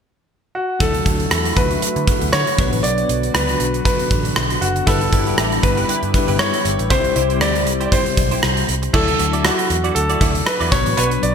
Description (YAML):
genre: 1980s-style pop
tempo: 118 BPM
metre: 4/4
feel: swing 55% on 16ths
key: D major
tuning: A4 = 440 Hz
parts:
  - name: clear concert grand piano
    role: melody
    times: 0.6-11.3 s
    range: F#4 to D5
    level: -21 LUFS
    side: equal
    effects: ping-pong delay
  - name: bell-like tine electric piano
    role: accompaniment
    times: 0.8-11.3 s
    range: F#3 to C5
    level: -24 LUFS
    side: left 6 dB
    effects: ensemble chorus
  - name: phased analog pad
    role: sustained chords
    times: 0.8-8.9 s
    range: C3 to G4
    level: -27 LUFS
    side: equal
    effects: phaser, chorus
  - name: vintage muted picked electric bass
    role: bass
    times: 0.8-11.3 s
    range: F#1 to D3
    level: -22 LUFS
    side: equal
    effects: none
  - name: gated 80s drum kit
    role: drums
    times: 0.8-11.3 s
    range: crash cymbal, hi-hat, kick drum, rim click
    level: -19 LUFS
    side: right 1 dB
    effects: gated reverb
  - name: direct-recorded clean electric guitar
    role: riff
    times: 4.9-11.3 s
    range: D4 to D5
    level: -26 LUFS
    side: right 6 dB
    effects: ensemble chorus
room: moderate lush hall reverb, RT60 2.1 s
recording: bright 1980s-style digital production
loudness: -15 LUFS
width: side -7 dB against mid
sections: 0.8-8.9 A section; 8.9-11.3 B section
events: none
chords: 0.0 N.C.; 0.8 Dadd9; 2.6 Bm; 4.9 G6; 6.9 C; 8.9 Dadd9; 10.7 Bmadd9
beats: 0.30 | 0.80 1.31 1.82 2.33 | 2.84 3.35 3.85 4.36 | 4.87 5.38 5.89 6.40 | 6.91 7.41 7.92 8.43 | 8.94 9.45 9.96 10.46 | 10.97